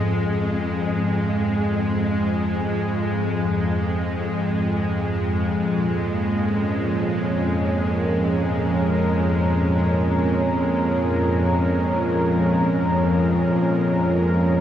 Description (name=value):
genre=dark ambient drone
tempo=free time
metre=none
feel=none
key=unclear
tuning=A4 = 438 Hz
part: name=bronze singing bowl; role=arpeggios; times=0.0-6.0 s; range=Ab2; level=-30 LUFS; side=equal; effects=none
part: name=bowed-like drone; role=drone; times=0.0-14.6 s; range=F2 to Ab3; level=-22 LUFS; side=left 1 dB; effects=built-in reverb
part: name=sweeping resonant pad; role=sustained chords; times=5.1-14.6 s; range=F2 to Bb4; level=-21 LUFS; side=right 1 dB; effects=chorus
room=wet cathedral reverb, RT60 6.8 s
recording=in a vast, echoing space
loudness=-19 LUFS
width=side -10 dB against mid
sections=0.0-14.6 A section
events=none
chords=0.0 Fm; 5.2 Gb/F (rootless)